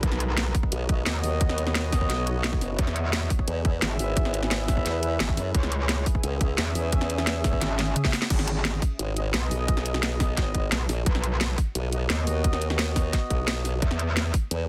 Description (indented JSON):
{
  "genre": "dark technical drum and bass",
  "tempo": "174 BPM",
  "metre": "4/4",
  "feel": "straight",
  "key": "unclear",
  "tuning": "A4 = 440 Hz",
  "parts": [
    { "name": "deep dark ambient pad", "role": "sustained chords", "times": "0.0-8.3 s", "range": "B3 to D#6", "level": "-38 LUFS", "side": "equal", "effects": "chorus, built-in reverb, sidechain pumping" },
    { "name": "metallic wobble bass", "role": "bass", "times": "0.0-14.3 s", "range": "G#1 to E2", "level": "-29 LUFS", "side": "equal", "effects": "distortion, chorus, overdrive" },
    { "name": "drum and bass drum kit", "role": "drums", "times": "0.0-14.6 s", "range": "crash cymbal, hi-hat, snare drum, toms", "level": "-31 LUFS", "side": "equal", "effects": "overdrive" },
    { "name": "electronic kick drum", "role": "drums", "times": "0.0-14.4 s", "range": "none", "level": "-27 LUFS", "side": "equal", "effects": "overdrive" },
    { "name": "formant-sweep wobble bass", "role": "bass", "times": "0.7-14.7 s", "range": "F#1 to F#2", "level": "-30 LUFS", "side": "equal", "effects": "chorus" },
    { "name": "dark brass ensemble", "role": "stabs", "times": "0.9-13.8 s", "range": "B3 to E5", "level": "-36 LUFS", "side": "equal", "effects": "digital delay" }
  ],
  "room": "digital ambience",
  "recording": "dense, heavily limited modern master",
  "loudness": "-26 LUFS",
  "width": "mono",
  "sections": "0.0-8.3 A section; 8.3-14.7 A section",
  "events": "drop 0.0-8.3, 8.3-14.7; drum fill 7.8-8.3",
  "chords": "0.0 B; 2.8 E; 5.5 C#m; 8.3 G#m; 11.1 B; 13.8 N.C.",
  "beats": "| 0.03 0.37 0.72 1.06 | 1.41 1.75 2.10 2.44 | 2.79 3.13 3.48 3.82 | 4.17 4.51 4.86 5.20 | 5.54 5.89 6.24 6.58 | 6.92 7.27 7.61 7.96 | 8.30 8.65 8.99 9.34 | 9.68 10.03 10.37 10.72 | 11.06 11.41 11.75 12.10 | 12.44 12.79 13.13 13.48 | 13.82 14.17 14.51"
}